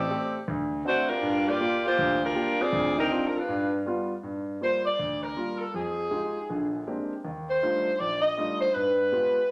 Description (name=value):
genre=jazz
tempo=160 BPM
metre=4/4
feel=swing 64% on 8ths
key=G minor from 4.2 s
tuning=A4 = 442 Hz
part: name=warm saxophone section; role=melody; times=0.0-9.5 s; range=G3 to Eb5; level=-28 LUFS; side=equal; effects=none
part: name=clear concert grand piano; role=accompaniment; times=0.0-9.4 s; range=Bb1 to G4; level=-33 LUFS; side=equal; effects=none
room=wet large studio reverb, RT60 0.9 s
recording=none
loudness=-27 LUFS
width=mono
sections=0.0-4.2 A section; 4.2-9.5 B section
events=none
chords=0.5 D7; 1.2 Gm7; 2.7 Dm7b5; 3.5 G7; 4.2 Gm7; 5.7 Fm9; 6.5 Bb13; 7.2 Ebmaj9#11; 8.7 G7b9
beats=0.09 0.47 0.84 | 1.22 1.60 1.97 2.35 | 2.72 3.10 3.48 3.85 | 4.23 4.61 4.98 5.36 | 5.74 6.11 6.49 6.87 | 7.24 7.62 7.99 8.37 | 8.75 9.12 9.50